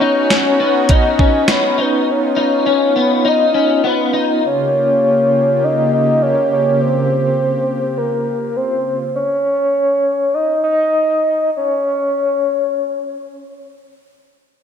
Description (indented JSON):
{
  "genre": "dream pop",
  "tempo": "102 BPM",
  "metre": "4/4",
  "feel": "straight",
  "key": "unclear",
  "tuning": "A4 = 442 Hz",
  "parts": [
    { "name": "soft octave-layered synth lead", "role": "melody", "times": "0.0-13.4 s", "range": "Bb4 to Eb5", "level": "-15 LUFS", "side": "left 1 dB", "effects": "chorus, tremolo, digital delay" },
    { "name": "warm analog pad", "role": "sustained chords", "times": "0.0-9.1 s", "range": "Db3 to G4", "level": "-18 LUFS", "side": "right 2 dB", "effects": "chorus, tremolo" },
    { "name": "electric guitar through a small old amp", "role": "arpeggios", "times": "0.0-4.4 s", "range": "Cb4 to Eb4", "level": "-18 LUFS", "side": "left 5 dB", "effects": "ensemble chorus, digital delay" },
    { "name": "clean 12-bit digital drum machine", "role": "drums", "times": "0.3-1.6 s", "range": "hi-hat, kick drum, snare drum", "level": "-15 LUFS", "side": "right 1 dB", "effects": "gated reverb" }
  ],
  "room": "wet lush hall reverb, RT60 1.9 s",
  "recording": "bright 1980s-style digital production",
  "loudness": "-13 LUFS",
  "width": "side -8 dB against mid",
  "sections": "0.0-14.1 A section",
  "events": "slowing down 9.1-14.1",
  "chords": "0.0 Cbadd9; 4.4 Eb13/Db; 9.1 N.C.",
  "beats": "0.31 0.90 1.48 | 2.07 2.66 3.25 3.84 | 4.43 5.01 5.60 6.19 | 6.78 7.37 7.96 8.54 | 9.13 9.72 10.32 10.92 | 11.53 12.16 12.80"
}